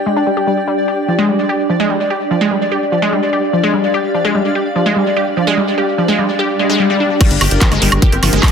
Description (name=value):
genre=psychedelic trance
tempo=147 BPM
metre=4/4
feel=straight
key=G phrygian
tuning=A4 = 440 Hz
part: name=pulsing gated texture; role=sustained chords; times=0.0-8.5 s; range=Bb4 to D5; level=-20 LUFS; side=left 2 dB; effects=chorus, built-in reverb, sidechain pumping
part: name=granular cloud pad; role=texture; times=0.0-8.5 s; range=D4 to G5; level=-19 LUFS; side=right 1 dB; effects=built-in reverb, sidechain pumping
part: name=wide unison pluck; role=riff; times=0.1-8.5 s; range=F3 to G4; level=-16 LUFS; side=moving between left 4 dB and right 5 dB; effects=auto-pan, sidechain pumping, digital delay
part: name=swell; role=sound effects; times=6.5-7.2 s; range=none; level=-22 LUFS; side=left 4 dB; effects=none
part: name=drum and bass drum kit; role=drums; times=7.2-8.5 s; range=crash cymbal, handclaps, hi-hat, woodblock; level=-16 LUFS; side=right 1 dB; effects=none
part: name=electronic kick drum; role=drums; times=7.2-8.5 s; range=none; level=-12 LUFS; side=equal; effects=none
part: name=tight sequencer bass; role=bass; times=7.3-8.4 s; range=G1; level=-15 LUFS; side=equal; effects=tube saturation
part: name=resonant blip pluck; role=second line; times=7.6-8.3 s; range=C4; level=-28 LUFS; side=left 2 dB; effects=none
room=moderate digital room reverb, RT60 1.4 s, digital ambience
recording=none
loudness=-12 LUFS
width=side -7 dB against mid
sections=0.0-7.2 A section; 7.2-8.5 B section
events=filter sweep on synth arpeggio sound 0.0-7.2; swell 6.5-7.2; drop 7.2-8.5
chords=0.0 G5